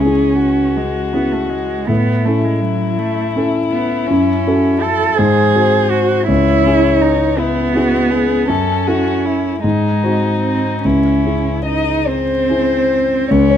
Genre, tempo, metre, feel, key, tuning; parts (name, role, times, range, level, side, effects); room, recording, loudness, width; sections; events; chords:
classical, slow romantic movement for piano trio; 48-55 BPM (dotted quarters); 6/8; rubato; C# minor; A4 = 443 Hz
dark violin; melody; 0.0-13.6 s; D#4 to D#5; -19 LUFS; left 8 dB
dark cello; second line; 0.0-13.6 s; F#3 to A4; -17 LUFS; right 4 dB
dark concert grand piano; accompaniment; 0.0-13.6 s; C#2 to C#5; -16 LUFS; left 1 dB
light reverb; close, detailed microphones, vinyl crackle; -13 LUFS; side -9 dB against mid
0.0-13.3 A section
0.0 C#m; 1.9 A; 4.1 F#m; 5.2 G#7; 6.3 C#m; 8.5 F#m7; 9.6 G#7; 10.8 C#m